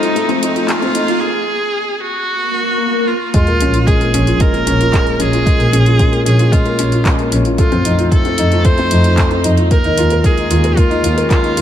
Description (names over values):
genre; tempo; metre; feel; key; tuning
piano and strings electronica; 113 BPM; 4/4; straight; Bb minor; A4 = 441 Hz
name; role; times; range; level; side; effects
rich viola; melody; 0.0-11.6 s; Eb4 to C5; -18 LUFS; right 2 dB; digital delay
warm chamber string section; sustained chords; 0.0-1.2, 7.6-11.6 s; Eb3 to F4; -24 LUFS; right 1 dB; sidechain pumping
felt-muted upright piano; riff; 0.0-11.6 s; Ab3 to Bb4; -17 LUFS; left 2 dB; digital delay
deep house drum kit; drums; 0.0-11.6 s; handclaps, hi-hat; -24 LUFS; equal; none
riser, swell and sub drop; sound effects; 0.0-5.5 s; none; -21 LUFS; left 1 dB; none
electronic kick drum; drums; 3.3-11.4 s; none; -13 LUFS; equal; none
dark symphonic double bass section; bass; 3.5-11.6 s; Bb1 to F2; -16 LUFS; equal; sidechain pumping
room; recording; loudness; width
light reverb; none; -11 LUFS; side -10 dB against mid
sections
0.0-3.3 A section; 3.3-11.6 B section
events
build-up 0.0-3.3; riser 0.0-1.2; break 1.2-3.3; swell 2.4-3.3; drop 3.3-11.6; impact 3.3-5.5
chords
0.0 F7; 1.2 N.C.; 3.3 Bbm7; 7.6 F7; 9.7 Ebsus2